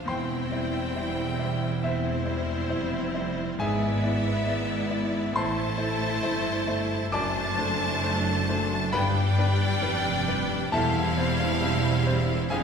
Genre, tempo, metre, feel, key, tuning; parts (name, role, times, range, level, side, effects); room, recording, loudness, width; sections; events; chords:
classical; 68 BPM; 4/4; rubato; C major; A4 = 439 Hz
clear grand piano; melody; 0.0-12.6 s; E2 to D6; -28 LUFS; left 2 dB
warm symphonic violin section; melody; 0.0-12.6 s; C5 to D5; -36 LUFS; left 2 dB
rich symphonic violin section; second line; 0.0-12.6 s; C5 to A5; -32 LUFS; left 2 dB
rich symphonic viola section; accompaniment; 0.0-12.6 s; D3 to E4; -32 LUFS; right 2 dB
clear symphonic cello section; bass; 0.0-12.6 s; E2 to A2; -33 LUFS; right 2 dB
rich symphonic double bass section; bass; 0.0-12.6 s; E1 to A1; -31 LUFS; right 2 dB
wet scoring stage reverb, RT60 2.1 s; heard from further back in the room; -24 LUFS; side -6 dB against mid
0.0-12.6 A section
0.1 C/E; 3.6 E7/G#; 5.4 Am; 7.1 D7/F#; 8.9 G; 10.7 C/E